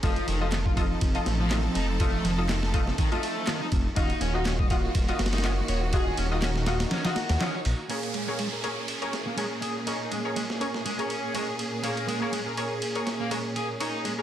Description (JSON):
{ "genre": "breakbeat, breaks", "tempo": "122 BPM", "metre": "4/4", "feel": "swing 55% on 16ths", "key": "Bb minor", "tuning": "A4 = 440 Hz", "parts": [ { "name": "clear studio string section", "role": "sustained chords", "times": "0.0-14.2 s", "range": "Bb2 to A4", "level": "-33 LUFS", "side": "right 1 dB", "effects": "sidechain pumping" }, { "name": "distorted electric guitar", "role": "riff", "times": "0.0-14.1 s", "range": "Eb3 to Eb5", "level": "-33 LUFS", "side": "equal", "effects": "distortion, overdrive, low-pass filter, tape echo" }, { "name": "orchestra-hit-like synth stab", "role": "stabs", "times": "0.0-14.2 s", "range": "F4 to Eb5", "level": "-33 LUFS", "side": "left 1 dB", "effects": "built-in reverb, tape echo" }, { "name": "phased detuned saw bass", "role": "bass", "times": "0.0-7.7 s", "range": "Eb1 to Eb2", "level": "-28 LUFS", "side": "equal", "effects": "phaser" }, { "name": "breakbeat sampler-style drum kit", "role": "drums", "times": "0.0-14.2 s", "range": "kick drum, ride cymbal, snare drum", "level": "-30 LUFS", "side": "equal", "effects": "high-pass filter on cymbals, high-pass filter on kick, high-pass filter on snare, high-pass filter on room" }, { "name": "electronic handclaps", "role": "drums", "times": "0.5-7.5 s", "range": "none", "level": "-38 LUFS", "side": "equal", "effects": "none" }, { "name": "downlifter", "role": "sound effects", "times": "7.9-11.8 s", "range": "none", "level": "-38 LUFS", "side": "right 2 dB", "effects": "none" } ], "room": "moderate studio reverb, RT60 0.6 s", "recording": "dense, heavily limited modern master", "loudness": "-25 LUFS", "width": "side -11 dB against mid", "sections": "0.0-7.9 A section; 7.9-14.2 B section", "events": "kick drops out 6.9-7.9; band accent 7.4; filter sweep on distorted electric guitar 7.9-14.2", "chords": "0.0 F7; 4.0 Ebmadd9; 7.9 Bbm7", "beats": "| 0.03 0.52 1.02 1.51 | 2.00 2.49 2.98 3.48 | 3.97 4.46 4.95 5.44 | 5.93 6.43 6.92 7.41 | 7.90 8.39 8.88 9.38 | 9.87 10.36 10.85 11.34 | 11.84 12.33 12.82 13.31 | 13.80" }